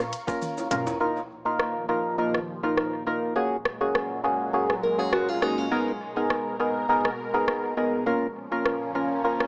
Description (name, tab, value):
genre	dancehall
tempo	102 BPM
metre	4/4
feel	straight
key	unclear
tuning	A4 = 440 Hz
part	percussive organ stab	accompaniment	0.0-9.5 s	A#3 to A#4	-27 LUFS	equal	chorus, phaser, sidechain pumping
part	lush unison pad	sustained chords	0.0-9.5 s	D#2 to C#6	-37 LUFS	equal	chorus, phaser, sidechain pumping
part	upright bass	bass	0.0-0.9 s	A#1 to B1	-41 LUFS	equal	none
part	island pop drum kit	drums	0.1-9.5 s	hi-hat, kick drum, rim click, shaker, toms	-32 LUFS	equal	vintage 12-bit sampler grit, tape echo
part	maracas and timbales	percussion	0.1-1.0 s	none	-40 LUFS	equal	tape echo
part	fingerpicked acoustic archtop guitar	arpeggios	4.8-5.9 s	C#4 to A#4	-30 LUFS	equal	tape echo
room	light reverb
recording	echo-heavy mix, small speaker sound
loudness	-26 LUFS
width	mono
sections	0.0-1.0 A section; 1.0-9.5 B section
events	drum fill 0.4-1.0; kick muted 9.2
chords	0.0 A#m; 1.0 D#sus2; 3.4 F#add9; 5.7 G#madd9; 8.1 A#m